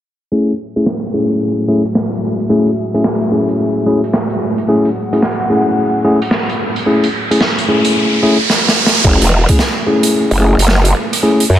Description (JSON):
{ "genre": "glitch hop", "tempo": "110 BPM", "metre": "4/4", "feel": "swing 64% on 16ths", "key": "F# minor", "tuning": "A4 = 440 Hz", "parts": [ { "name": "dark analog pad", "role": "sustained chords", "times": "0.3-7.9 s", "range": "A3 to F#5", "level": "-20 LUFS", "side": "left 1 dB", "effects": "chorus, vintage 12-bit sampler grit, sidechain pumping" }, { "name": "mellow tine electric piano", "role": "stabs", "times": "0.3-11.4 s", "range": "A3 to G#4", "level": "-14 LUFS", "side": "left 1 dB", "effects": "vintage 12-bit sampler grit, sidechain pumping, low-pass filter, dub echo" }, { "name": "raw garage drum kit", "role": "drums", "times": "0.5-11.5 s", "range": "crash cymbal, hi-hat, rim click, snare drum", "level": "-18 LUFS", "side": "right 1 dB", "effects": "none" }, { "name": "riser", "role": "sound effects", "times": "6.2-9.0 s", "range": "none", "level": "-18 LUFS", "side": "right 2 dB", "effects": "none" }, { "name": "growl bass", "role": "bass", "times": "9.0-11.6 s", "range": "E1 to F#2", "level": "-11 LUFS", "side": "equal", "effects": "chorus" }, { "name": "electronic kick drum", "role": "drums", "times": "9.0-9.6 s", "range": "none", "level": "-13 LUFS", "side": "equal", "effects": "none" } ], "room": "light reverb", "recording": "low-pass filter", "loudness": "-11 LUFS", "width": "side -11 dB against mid", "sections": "0.3-9.0 A section; 9.0-11.6 B section", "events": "filter sweep on tine electric piano 0.3-9.0; filter sweep 0.3-9.0; riser 6.2-9.0; drum fill 8.5-9.0", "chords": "0.3 F#m9" }